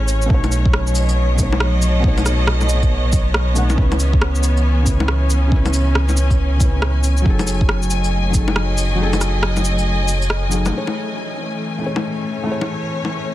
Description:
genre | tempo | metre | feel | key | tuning
future garage | 138 BPM | 4/4 | swing 63% on 16ths | F# dorian | A4 = 435 Hz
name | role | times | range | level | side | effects
felt-muted upright piano | accompaniment | 0.0-13.3 s | B2 to F#5 | -24 LUFS | equal | sidechain pumping, tape echo
clear studio string section | sustained chords | 0.0-13.3 s | E3 to G#5 | -24 LUFS | left 1 dB | vintage 12-bit sampler grit, sidechain pumping
warm sub bass | bass | 0.0-10.7 s | F#1 to C#2 | -18 LUFS | equal | sidechain pumping
flickering grainy texture | texture | 0.0-10.7 s | C#5 | -33 LUFS | right 2 dB | built-in reverb
electronic cabasa, shaker, bongos and rim click | drums | 0.1-13.1 s | none | -23 LUFS | left 1 dB | soft clipping on snare
electronic kick drum | drums | 0.3-8.5 s | none | -17 LUFS | equal | none
room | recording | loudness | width
digital ambience | dense, heavily limited modern master | -15 LUFS | side -14 dB against mid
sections
0.0-10.7 A section; 10.7-13.3 B section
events
kick drops out 9.0-10.7; band accent 10.3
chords
0.3 B9; 3.8 C#m7; 7.3 F#m69; 10.7 Amaj7

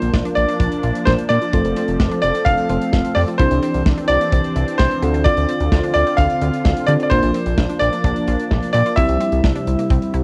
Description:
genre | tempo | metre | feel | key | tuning
synth-pop | 129 BPM | 4/4 | straight | unclear | A4 = 440 Hz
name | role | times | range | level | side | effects
bright grand piano | melody | 0.0-10.2 s | C5 to F5 | -22 LUFS | equal | cassette tape
FM electric piano with soft pad layer | accompaniment | 0.0-10.2 s | A3 to E5 | -26 LUFS | equal | chorus, cassette tape
sweeping resonant pad | sustained chords | 0.0-10.2 s | C3 to A4 | -27 LUFS | equal | chorus, cassette tape
unison pluck | arpeggios | 0.0-10.2 s | Bb3 to G4 | -34 LUFS | equal | none
fat analog bass | bass | 0.0-10.2 s | F1 to D3 | -22 LUFS | equal | none
modern studio drum kit | drums | 0.0-10.2 s | hi-hat, kick drum, snare drum | -22 LUFS | equal | cassette tape
room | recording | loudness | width
light reverb, studio ambience | home recording on cassette | -17 LUFS | mono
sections
0.0-10.2 A section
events
none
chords
0.0 Bb; 1.5 F; 3.4 Cadd9; 5.0 Dm7; 7.1 Bb; 9.0 C

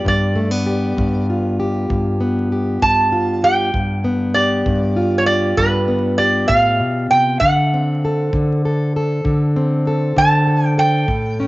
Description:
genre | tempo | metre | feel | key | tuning
acoustic country blues, solo or duo | 65 BPM (dotted quarters) | 12/8 | straight | unclear | A4 = 440 Hz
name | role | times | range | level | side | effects
metal-body resonator slide guitar | melody | 0.0-11.5 s | B4 to A5 | -17 LUFS | right 1 dB | cassette tape
fingerpicked plugged-in steel-string acoustic guitar | accompaniment | 0.0-11.5 s | G2 to A4 | -17 LUFS | equal | cassette tape
kick drum | drums | 0.1-11.2 s | none | -24 LUFS | equal | cassette tape
room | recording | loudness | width
light reverb, studio reverb | home recording on cassette, vinyl crackle, nothing above 7.7 kHz | -14 LUFS | side -19 dB against mid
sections
0.0-11.5 A section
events
none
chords
0.0 G7; 7.4 D7

